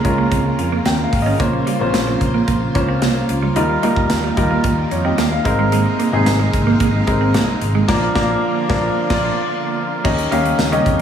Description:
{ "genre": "1980s-style pop", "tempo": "111 BPM", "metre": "4/4", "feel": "straight", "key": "Eb mixolydian", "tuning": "A4 = 439 Hz", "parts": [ { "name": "warm concert grand piano", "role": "accompaniment", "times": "0.0-11.0 s", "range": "F3 to G5", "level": "-19 LUFS", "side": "left 2 dB", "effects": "none" }, { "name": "string machine, violins", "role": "sustained chords", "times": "0.0-11.0 s", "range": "C3 to C5", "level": "-23 LUFS", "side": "right 1 dB", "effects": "ensemble chorus" }, { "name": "clean electric guitar", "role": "riff", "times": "0.0-10.9 s", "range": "F3 to Eb4", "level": "-23 LUFS", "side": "right 8 dB", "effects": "lush chorus, tape echo" }, { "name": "fingered electric bass", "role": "bass", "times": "0.0-11.0 s", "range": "Ab1 to F2", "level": "-21 LUFS", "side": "right 1 dB", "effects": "none" }, { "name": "modern studio drum kit", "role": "drums", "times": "0.0-11.0 s", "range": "crash cymbal, hi-hat, kick drum, snare drum, tambourine", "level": "-22 LUFS", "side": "equal", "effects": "gated reverb" }, { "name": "tambourine", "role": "percussion", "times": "0.9-10.7 s", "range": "none", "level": "-38 LUFS", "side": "right 9 dB", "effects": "none" } ], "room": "light reverb, small room reverb", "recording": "studio reverb", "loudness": "-15 LUFS", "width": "side -8 dB against mid", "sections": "0.0-10.0 A section", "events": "grand piano fill 0.6-1.4; band accent 7.9-10.0", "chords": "0.0 Db6; 1.4 Bbmadd9; 3.6 Ebadd9; 5.5 Abadd9; 7.9 Bb; 10.0 Eb7", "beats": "0.32 0.86 | 1.40 1.94 2.48 3.02 | 3.56 4.10 4.64 5.18 | 5.72 6.26 6.80 7.34 | 7.88 8.43 8.97 9.51 | 10.05 10.59" }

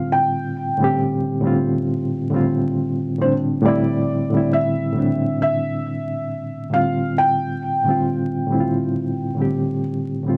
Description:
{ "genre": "hip hop", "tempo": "68 BPM", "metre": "4/4", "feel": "swing 56% on 16ths", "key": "unclear", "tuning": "A4 = 440 Hz", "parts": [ { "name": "felt-muted upright piano", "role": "melody", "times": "0.0-9.8 s", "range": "C5 to G5", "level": "-25 LUFS", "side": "equal", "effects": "plate reverb" }, { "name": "reed electric piano", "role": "accompaniment", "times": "0.0-10.4 s", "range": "A2 to G4", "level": "-22 LUFS", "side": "equal", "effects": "fast tremolo" } ], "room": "wet small room ambience, RT60 0.5 s", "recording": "dark, warm production, vinyl crackle", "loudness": "-21 LUFS", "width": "mono", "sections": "0.0-10.4 A section", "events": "none", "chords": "0.0 G9sus4; 3.6 C69; 6.7 G9sus4", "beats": "| 0.12 1.00 1.88 2.76 | 3.65 4.53 5.41 6.29 | 7.17 8.06 8.94 9.82" }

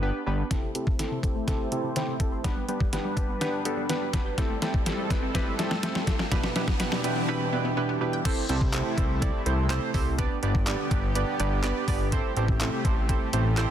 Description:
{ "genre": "dance-pop", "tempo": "124 BPM", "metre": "4/4", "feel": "straight", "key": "C major", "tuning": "A4 = 440 Hz", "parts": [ { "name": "warm analog keys", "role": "accompaniment", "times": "0.0-13.7 s", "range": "B2 to D5", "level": "-30 LUFS", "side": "right 3 dB", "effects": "chorus, sidechain pumping, low-pass filter" }, { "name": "fat analog bass", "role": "bass", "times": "0.0-0.4, 8.5-13.7 s", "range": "G1 to C2", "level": "-27 LUFS", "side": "equal", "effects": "sidechain pumping" }, { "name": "chorused pulse-width pad", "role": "sustained chords", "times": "0.7-13.7 s", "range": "B2 to C5", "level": "-33 LUFS", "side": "equal", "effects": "sidechain pumping, low-pass filter" }, { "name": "wide unison pluck", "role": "arpeggios", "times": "0.5-8.2 s", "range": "C3 to G6", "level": "-38 LUFS", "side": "left 2 dB", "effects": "none" }, { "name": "detuned 8-bit digital drum machine", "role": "drums", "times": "0.5-13.7 s", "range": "crash cymbal, handclaps, hi-hat, kick drum, snare drum", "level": "-28 LUFS", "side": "equal", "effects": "overdrive" }, { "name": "riser", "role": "sound effects", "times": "2.7-7.3 s", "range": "none", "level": "-38 LUFS", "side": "equal", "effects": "none" } ], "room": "light reverb", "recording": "dense, heavily limited modern master", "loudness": "-24 LUFS", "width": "side -10 dB against mid", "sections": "0.5-8.3 A section; 8.3-13.7 B section", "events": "break 0.0-0.5; build-up 0.5-8.3; drum fill 0.5-7.3; filter sweep 0.5-8.3; riser 2.7-8.3; drop 8.3-13.7", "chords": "0.0 G; 0.5 C6; 2.4 G; 4.4 Am7; 6.3 Em7/B; 8.3 C6; 10.2 G; 12.1 Am7", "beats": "0.03 | 0.51 0.99 1.48 1.96 | 2.45 2.93 3.41 3.90 | 4.38 4.87 5.35 5.83 | 6.32 6.80 7.29 7.77 | 8.25 8.74 9.22 9.70 | 10.19 10.67 11.16 11.64 | 12.12 12.61 13.09 13.57" }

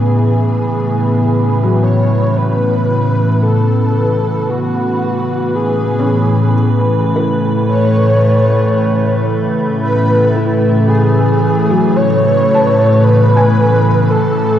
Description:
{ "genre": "ambient", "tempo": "56 BPM", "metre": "4/4", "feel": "straight", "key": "A major", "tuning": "A4 = 438 Hz", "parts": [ { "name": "breathy flute-like synth lead", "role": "melody", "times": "0.0-14.6 s", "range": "E4 to C#5", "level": "-17 LUFS", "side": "equal", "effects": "ensemble chorus, tape echo" }, { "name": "evolving wavetable pad", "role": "sustained chords", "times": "0.0-14.6 s", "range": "A2 to B4", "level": "-12 LUFS", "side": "equal", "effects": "chorus, built-in reverb" }, { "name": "felt-muted upright piano", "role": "arpeggios", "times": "0.0-14.6 s", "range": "F#3 to A5", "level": "-23 LUFS", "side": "left 1 dB", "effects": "tape echo" } ], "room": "wet concert hall reverb, RT60 2.0 s", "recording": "dark, warm production", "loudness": "-10 LUFS", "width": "side -10 dB against mid", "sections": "0.0-14.6 A section", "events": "fade-in on felt piano 0.0-14.6; fade-in on soft synth lead 0.0-14.6", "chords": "0.0 Amaj9", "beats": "0.18 1.25 2.33 | 3.40 4.47 5.54 6.61 | 7.68 8.75 9.82 10.90 | 11.97 13.04 14.11" }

